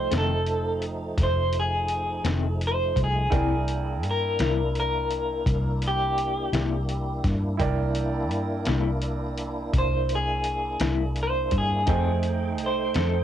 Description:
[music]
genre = slow blues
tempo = 56 BPM (dotted quarters)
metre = 12/8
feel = straight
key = unclear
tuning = A4 = 439 Hz
[part]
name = electric guitar through a small old amp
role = melody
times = 0.0-13.2 s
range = G4 to C5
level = -27 LUFS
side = equal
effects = tremolo, cassette tape
[part]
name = clear upright piano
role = accompaniment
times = 0.0-13.2 s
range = A3 to G5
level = -34 LUFS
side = right 8 dB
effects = cassette tape
[part]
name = tonewheel organ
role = sustained chords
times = 0.0-13.2 s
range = F3 to G5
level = -34 LUFS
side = equal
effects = slow rotary speaker, overdrive, chorus vibrato, cassette tape
[part]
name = vintage muted fingered electric bass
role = bass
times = 0.0-13.2 s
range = F1 to G2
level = -27 LUFS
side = equal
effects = none
[part]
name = electric guitar through a small old amp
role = accompaniment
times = 0.1-13.2 s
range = F2 to A4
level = -29 LUFS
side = left 8 dB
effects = tremolo, cassette tape
[part]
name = trip hop sampler-style drum kit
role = drums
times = 0.1-13.1 s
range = hi-hat, kick drum, snare drum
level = -29 LUFS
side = equal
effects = cassette tape
[sound]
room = light reverb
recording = home recording on cassette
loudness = -23 LUFS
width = side -10 dB against mid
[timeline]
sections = 0.0-13.2 A section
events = clean electric guitar solo 0.0-13.2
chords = 0.0 F7; 3.3 C7; 11.9 F7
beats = 0.11 1.18 2.25 | 3.32 4.39 5.46 6.53 | 7.60 8.67 9.74 10.81 | 11.88 12.95

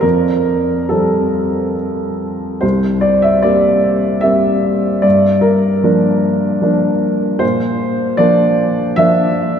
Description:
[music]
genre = neoclassical minimalist piano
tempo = 68-77 BPM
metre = 3/4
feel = rubato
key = unclear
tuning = A4 = 440 Hz
[part]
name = warm baby grand piano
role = solo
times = 0.0-9.6 s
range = C2 to E5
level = -12 LUFS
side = equal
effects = none
[sound]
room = wet cathedral reverb, RT60 5.2 s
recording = recorded in a church or concert hall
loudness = -12 LUFS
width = side -8 dB against mid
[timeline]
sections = 0.0-2.6 A section; 2.6-9.6 A section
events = none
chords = 0.0 Fadd9; 2.6 C7; 5.0 Gm7; 7.4 Bbadd9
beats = | 0.03 0.91 1.77 | 2.63 3.44 4.23 | 5.04 5.84 6.63 | 7.42 8.20 8.98

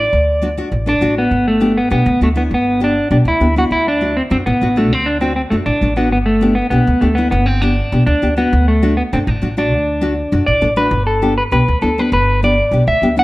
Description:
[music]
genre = latin, cumbia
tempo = 200 BPM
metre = 4/4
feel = straight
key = G major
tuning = A4 = 439 Hz
[part]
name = clean electric guitar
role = melody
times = 0.0-13.2 s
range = A3 to F#5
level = -15 LUFS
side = equal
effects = spring reverb, slapback echo
[part]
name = nylon-string guitar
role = accompaniment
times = 0.0-13.2 s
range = A3 to A4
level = -19 LUFS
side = left 1 dB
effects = none
[part]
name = upright bass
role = bass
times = 0.0-13.2 s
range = G1 to F#2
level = -17 LUFS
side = equal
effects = none
[sound]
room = moderate studio reverb, RT60 0.6 s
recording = none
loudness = -12 LUFS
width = side -19 dB against mid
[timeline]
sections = 0.0-1.3 A section; 1.3-10.9 B section; 10.9-13.2 B section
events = none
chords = 0.0 D; 1.3 G; 3.7 D; 6.1 G; 8.5 D; 10.9 G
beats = | 0.12 0.42 0.72 1.02 | 1.32 1.61 1.92 2.21 | 2.51 2.81 3.11 3.41 | 3.71 4.01 4.31 4.61 | 4.91 5.21 5.51 5.82 | 6.12 6.42 6.72 7.02 | 7.32 7.62 7.92 8.22 | 8.52 8.82 9.12 9.42 | 9.72 10.02 10.32 10.62 | 10.92 11.22 11.52 11.82 | 12.12 12.42 12.72 13.03

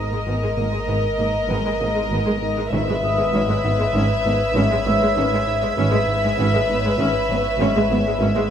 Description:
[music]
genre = cinematic, suspense film score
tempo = 98 BPM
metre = 5/4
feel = straight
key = unclear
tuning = A4 = 441 Hz
[part]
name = warm studio violin section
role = melody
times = 0.0-8.5 s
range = D#5 to E5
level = -24 LUFS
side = left 5 dB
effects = none
[part]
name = dark studio violin section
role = second line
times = 0.0-8.5 s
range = A#4 to B4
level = -26 LUFS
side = right 1 dB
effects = none
[part]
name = deep dark ambient pad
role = sustained chords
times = 0.0-8.5 s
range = B3 to E5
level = -28 LUFS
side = equal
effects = chorus, built-in reverb, phaser
[part]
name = smooth gliding synth bass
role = riff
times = 0.0-8.4 s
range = G#2 to G#3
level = -26 LUFS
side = right 1 dB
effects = none
[part]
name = pure sine sub bass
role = drone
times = 0.0-8.5 s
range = G#1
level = -33 LUFS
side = left 1 dB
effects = none
[part]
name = vibraphone with soft mallets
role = texture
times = 0.0-8.5 s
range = D#5 to E6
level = -32 LUFS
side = right 4 dB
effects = none
[part]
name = dark symphonic viola section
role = accompaniment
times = 0.1-8.4 s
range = G#3 to C#4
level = -26 LUFS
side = equal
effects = none
[part]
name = warm studio cello section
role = bass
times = 0.1-8.4 s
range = G#2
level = -26 LUFS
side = right 2 dB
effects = none
[part]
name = warm symphonic double bass section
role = bass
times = 0.3-8.2 s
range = G#1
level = -27 LUFS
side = right 2 dB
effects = none
[part]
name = timpani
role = percussion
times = 2.7-3.6 s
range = G#2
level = -31 LUFS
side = left 1 dB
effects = none
[part]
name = warm symphonic violin section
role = texture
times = 2.7-8.5 s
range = E6 to B6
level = -33 LUFS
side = equal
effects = none
[sound]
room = moderate recital hall reverb, RT60 1.5 s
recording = none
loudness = -17 LUFS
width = side -8 dB against mid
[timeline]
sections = 0.0-8.5 A section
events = none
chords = 0.0 G#madd9; 2.7 C#m7/G#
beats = 0.27 0.88 1.50 2.12 | 2.72 3.33 3.95 4.55 5.16 | 5.77 6.38 6.99 7.59 8.20

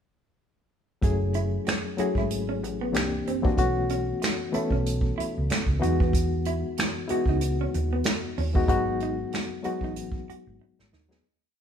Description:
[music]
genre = R&B, neo-soul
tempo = 94 BPM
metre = 4/4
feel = swing 57% on 16ths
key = unclear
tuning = A4 = 441 Hz
[part]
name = barky reed electric piano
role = accompaniment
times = 1.0-11.3 s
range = D#3 to A4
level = -28 LUFS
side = left 4 dB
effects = fast tremolo
[part]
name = hollow-body short-scale fingered electric bass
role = bass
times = 1.0-11.2 s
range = F#1 to E2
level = -29 LUFS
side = right 1 dB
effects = none
[part]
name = unplugged drum kit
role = drums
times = 1.0-11.2 s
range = finger snaps, hi-hat, kick drum, snare drum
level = -27 LUFS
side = right 1 dB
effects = none
[part]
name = electric guitar through a small old amp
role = second line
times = 1.4-11.2 s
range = B3 to F#4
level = -34 LUFS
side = right 4 dB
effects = none
[sound]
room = moderate stone room reverb, RT60 1.1 s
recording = band playing live in one room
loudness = -24 LUFS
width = side -8 dB against mid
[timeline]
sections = 1.0-11.2 verse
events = fade-out 8.7-11.2; drum fill 10.6-11.2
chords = 1.0 F#m9; 2.9 C9; 3.6 B9sus4; 5.8 Emaj9; 8.7 G#m7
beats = | 1.02 1.66 2.30 2.94 | 3.58 4.21 4.85 5.49 | 6.13 6.77 7.41 8.04 | 8.68 9.32 9.96 10.60

